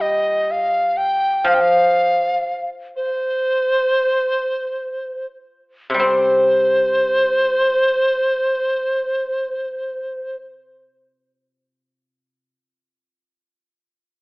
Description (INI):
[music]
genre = chinese traditional, Chinese chamber ensemble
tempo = free time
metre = none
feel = none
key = unclear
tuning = A4 = 440 Hz
[part]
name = reedy large dizi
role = melody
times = 0.0-10.4 s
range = C5 to G5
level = -17 LUFS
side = equal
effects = none
[part]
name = guzheng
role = accompaniment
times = 0.0-12.5 s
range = C3 to C4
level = -19 LUFS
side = equal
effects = none
[sound]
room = moderate recital hall reverb, RT60 1.5 s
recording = telephone sound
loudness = -16 LUFS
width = side -27 dB against mid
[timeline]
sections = 0.0-6.0 A section; 6.0-11.6 B section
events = slowing down 1.5-6.0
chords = none